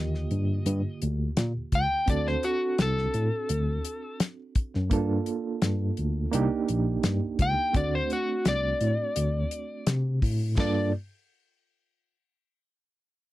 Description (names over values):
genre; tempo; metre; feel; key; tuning
straight-eighth soul blues; 85 BPM; 4/4; straight; G minor; A4 = 440 Hz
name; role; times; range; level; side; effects
electric slide guitar; melody; 0.0-10.9 s; F#4 to G5; -29 LUFS; left 2 dB; none
reed electric piano; accompaniment; 0.0-10.9 s; D3 to A4; -32 LUFS; right 6 dB; fast tremolo
overdriven tine electric piano; bass; 0.0-10.9 s; Bb1 to C3; -27 LUFS; equal; fast tremolo
damped 70s drum kit; drums; 0.1-10.8 s; crash cymbal, hi-hat, kick drum, snare drum; -27 LUFS; left 1 dB; none
room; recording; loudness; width
little or no reverb; dry, close 1970s-style studio recording; -25 LUFS; side -16 dB against mid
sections
0.0-10.6 A section; 10.6-13.3 B section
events
none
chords
0.0 Ebmaj7; 2.1 D7; 4.9 Gm7; 6.3 Cm7; 7.7 D7; 10.6 Gm7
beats
0.67 1.38 | 2.08 2.79 3.50 4.21 | 4.92 5.62 6.33 7.04 | 7.75 8.46 9.16 9.87 | 10.58